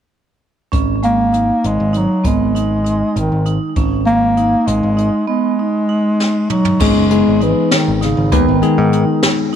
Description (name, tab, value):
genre	progressive instrumental, band music in an uneven meter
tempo	198 BPM (eighths)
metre	5/8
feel	straight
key	G# minor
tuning	A4 = 444 Hz
part	vibraphone with medium mallets	arpeggios	0.7-9.6 s	G#3 to D#4	-20 LUFS	right 8 dB	tape echo
part	modern bright picked electric bass	bass	0.7-9.0 s	F#1 to G#2	-19 LUFS	equal	none
part	jazz brush drum kit	drums	0.7-9.6 s	crash cymbal, hi-hat, kick drum, snare drum, toms	-19 LUFS	equal	none
part	breathy bass clarinet	melody	1.0-9.5 s	C#3 to A#3	-15 LUFS	equal	none
part	tine electric piano	accompaniment	6.8-9.6 s	G#3 to B4	-17 LUFS	left 14 dB	none
room	moderate plate reverb, RT60 2.5 s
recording	1960s-style stereo with parts hard left and right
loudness	-12 LUFS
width	side -9 dB against mid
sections	0.7-6.8 A section; 6.8-9.6 B section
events	drum fill 6.2-6.8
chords	0.7 G#5; 6.8 G#m